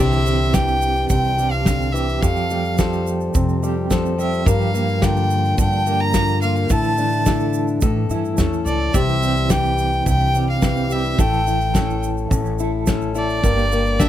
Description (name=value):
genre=acoustic folk duo or small band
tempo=107 BPM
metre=4/4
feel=straight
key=unclear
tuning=A4 = 439 Hz
part: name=clear fiddle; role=melody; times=0.0-14.1 s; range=D5 to Bb5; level=-22 LUFS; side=equal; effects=none
part: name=fingerpicked acoustic archtop guitar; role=accompaniment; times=0.0-14.1 s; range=F2 to Bb4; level=-23 LUFS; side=left 4 dB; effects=none
part: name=clean electric guitar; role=arpeggios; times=0.0-14.1 s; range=E3 to A4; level=-26 LUFS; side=right 5 dB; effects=tremolo
part: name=upright bass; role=bass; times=0.0-14.1 s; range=G1 to A2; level=-22 LUFS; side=equal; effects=none
part: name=egg shaker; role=percussion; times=0.1-14.1 s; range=none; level=-34 LUFS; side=right 10 dB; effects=none
part: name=loose indie drum kit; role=drums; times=0.5-14.1 s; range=kick drum, snare drum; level=-20 LUFS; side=equal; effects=none
room=little or no reverb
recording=close, detailed microphones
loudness=-16 LUFS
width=side -12 dB against mid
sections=0.0-14.1 A section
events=none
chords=0.0 Cadd9; 2.2 Fadd9; 4.5 Gm7; 6.7 Asus4; 7.8 A; 8.9 C; 11.2 A; 13.4 Gm